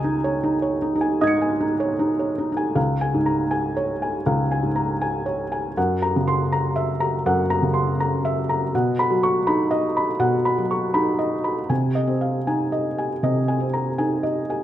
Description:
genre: neoclassical minimalist piano.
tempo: 80 BPM.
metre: 4/4.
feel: rubato.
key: Db major.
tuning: A4 = 440 Hz.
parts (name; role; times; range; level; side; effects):
felt-muted upright piano; solo; 0.0-14.6 s; Db2 to Db7; -20 LUFS; equal; none.
room: moderate recital hall reverb, RT60 1.5 s.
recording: none.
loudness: -20 LUFS.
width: side -12 dB against mid.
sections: 0.0-2.8 A section; 2.8-14.6 B section.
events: none.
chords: 0.0 Dbsus2; 2.8 Db; 5.8 Gb7; 8.7 Cb; 11.7 Ab/C.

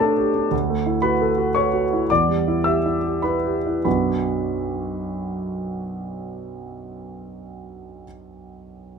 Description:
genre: neoclassical minimalist piano.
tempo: 94-119 BPM.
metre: 3/4.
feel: rubato.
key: B minor.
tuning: A4 = 443 Hz.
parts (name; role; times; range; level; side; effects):
warm concert grand piano; solo; 0.0-9.0 s; B1 to E6; -21 LUFS; right 1 dB; none.
room: moderate small room reverb, RT60 0.5 s.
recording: minimal, uncompressed stereo recording.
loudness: -19 LUFS.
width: side -6 dB against mid.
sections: 0.0-3.9 A section; 3.9-7.5 B section.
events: slowing down 0.0-3.9.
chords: 0.0 Gadd9/B; 0.5 Dadd9; 2.1 Em7; 3.9 Bm.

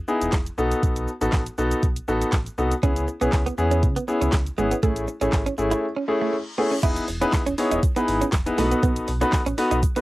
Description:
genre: dance-pop.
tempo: 120 BPM.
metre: 4/4.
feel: straight.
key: E major.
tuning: A4 = 440 Hz.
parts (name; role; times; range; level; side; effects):
clear concert grand piano; accompaniment; 0.1-10.0 s; A3 to C#5; -23 LUFS; left 1 dB; sidechain pumping, cassette tape.
smooth R&B drum kit; drums; 0.1-10.0 s; crash cymbal, handclaps, hi-hat, kick drum, shaker, snare drum; -24 LUFS; equal; none.
sub bass with octave; bass; 0.2-9.9 s; D#1 to C#3; -27 LUFS; equal; sidechain pumping.
direct-recorded clean electric guitar; riff; 2.8-10.0 s; G#3 to E4; -26 LUFS; right 4 dB; lush chorus, cassette tape.
reverse cymbal; sound effects; 6.0-6.8 s; none; -36 LUFS; left 3 dB; none.
egg shaker; percussion; 6.8-10.0 s; none; -47 LUFS; right 9 dB; none.
room: light reverb.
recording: home recording on cassette.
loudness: -20 LUFS.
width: side -18 dB against mid.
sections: 0.0-6.8 A section; 6.8-10.0 B section.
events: reverse cymbal 6.0-6.8.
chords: 0.0 Emaj7; 0.6 B7; 2.8 C#m7; 4.8 Amaj7; 6.8 Emaj7; 8.6 B7.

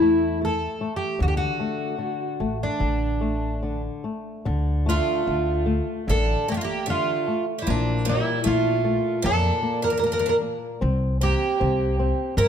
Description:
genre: fado-style ballad.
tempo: 76 BPM.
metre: 4/4.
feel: rubato.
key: D major, D minor from 4.5 s.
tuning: A4 = 440 Hz.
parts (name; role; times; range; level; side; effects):
fingerpicked twelve-string acoustic guitar; melody; 0.0-12.5 s; D4 to Bb4; -24 LUFS; equal; none.
flamenco guitar; accompaniment; 0.0-12.5 s; Bb2 to C4; -29 LUFS; left 4 dB; none.
upright bass; bass; 0.0-12.5 s; A1 to G2; -25 LUFS; equal; none.
picked twelve-string acoustic guitar; second line; 4.9-12.5 s; F3 to E4; -30 LUFS; right 9 dB; none.
room: light reverb.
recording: close, detailed microphones.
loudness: -21 LUFS.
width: side -8 dB against mid.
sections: 0.0-4.5 A section; 4.5-12.5 B section.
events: none.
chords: 0.0 A5; 1.2 D5; 7.7 Bb5; 10.8 C5.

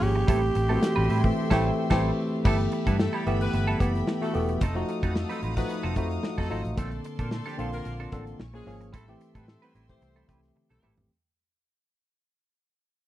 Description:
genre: polished 1980s jazz-funk pop.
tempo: 111 BPM.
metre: 4/4.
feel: swing 54% on 16ths.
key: unclear.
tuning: A4 = 439 Hz.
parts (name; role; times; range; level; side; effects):
growling alto saxophone; melody; 0.0-1.9 s; G4; -29 LUFS; right 2 dB; slapback echo.
clear horn section; second line; 0.0-10.9 s; G3 to Db5; -39 LUFS; left 3 dB; none.
tine electric piano; accompaniment; 0.0-11.1 s; D3 to A4; -29 LUFS; left 1 dB; wide subtle chorus.
warm studio string section; sustained chords; 0.0-11.1 s; Bb3 to Eb6; -40 LUFS; equal; none.
vintage muted fingered electric bass; bass; 0.0-11.1 s; E1 to Bb2; -29 LUFS; equal; none.
modern studio drum kit; drums; 0.0-11.1 s; crash cymbal, hi-hat, kick drum, snare drum, toms; -27 LUFS; equal; none.
semi-hollow electric guitar; riff; 0.2-11.0 s; F3 to B4; -34 LUFS; right 5 dB; analog chorus.
room: studio reverb.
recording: dry, close 1970s-style studio recording.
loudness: -24 LUFS.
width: side -13 dB against mid.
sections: 0.0-2.4 A section; 2.4-11.1 B section.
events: band accent 1.4-2.4; fade-out 2.4-11.1; drum fill 10.6-11.1.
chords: 0.3 Am7; 2.4 G69; 4.6 F7b9; 6.8 Bbmaj9; 8.4 Bbm7; 8.9 Am7.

